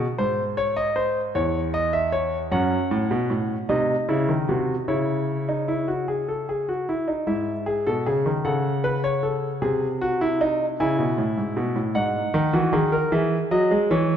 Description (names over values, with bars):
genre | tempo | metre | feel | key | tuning
classical, baroque-style 3-part fugue for grand piano | 51 BPM (dotted quarters) | 6/8 | straight | C# minor | A4 = 435 Hz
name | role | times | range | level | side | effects
warm concert grand piano | solo | 0.0-14.2 s | E2 to G#5 | -21 LUFS | equal | none
room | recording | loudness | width
wet concert hall reverb, RT60 2.0 s | none | -21 LUFS | side -9 dB against mid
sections
0.0-7.3 A section; 7.3-14.2 B section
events
none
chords
0.2 G#; 1.3 C#m/E; 2.5 F#madd11; 3.7 Cdim; 4.9 C#m; 7.3 C#m/G#; 8.5 F#m/C#; 9.6 G#7/B#; 10.8 C#m; 12.0 G#5; 13.1 C#m/E